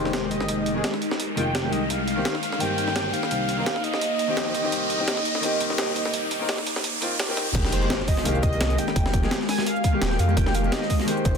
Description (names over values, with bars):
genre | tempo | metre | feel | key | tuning
liquid drum and bass | 170 BPM | 4/4 | swing 54% on 16ths | F dorian | A4 = 440 Hz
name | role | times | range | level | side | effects
warm velvety synth lead | melody | 0.0-11.4 s | C5 to Ab5 | -29 LUFS | right 1 dB | chorus, ping-pong delay
bright grand piano | accompaniment | 0.0-11.4 s | Eb3 to Bb4 | -29 LUFS | left 2 dB | vintage 12-bit sampler grit
ethereal airy pad | sustained chords | 0.0-11.4 s | Ab3 to D6 | -30 LUFS | left 2 dB | ensemble chorus, built-in reverb, sidechain pumping
smooth synth bass | bass | 0.0-11.4 s | Eb1 to F2 | -28 LUFS | equal | none
riser and impact | sound effects | 0.0-9.0 s | none | -30 LUFS | equal | none
breakbeat sampler-style drum kit | drums | 0.1-11.3 s | crash cymbal, hi-hat, shaker, snare drum | -29 LUFS | right 1 dB | high-pass filter on hats, small room ambience, high-pass filter on snare, high-pass filter on cymbals, high-pass filter on perc
breakbeat sampler-style drum kit | drums | 7.5-11.4 s | hi-hat, snare drum | -32 LUFS | equal | overdrive, high-pass filter on snare, small room ambience, high-pass filter on hats, high-pass filter on room
electronic kick drum | drums | 7.5-11.3 s | none | -23 LUFS | equal | small room ambience
room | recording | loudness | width
moderate lush hall reverb, RT60 2.1 s | dense, heavily limited modern master, high-pass filter | -22 LUFS | side -6 dB against mid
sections
0.0-7.5 A section; 7.5-11.4 B section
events
build-up 0.0-7.5; riser 0.0-7.5; filter sweep on ambient pad 0.0-7.5; filter sweep 0.0-7.5; drop 7.5-11.4; impact 7.5-9.0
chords
0.0 Fm11; 1.9 Cm7; 7.5 Fm11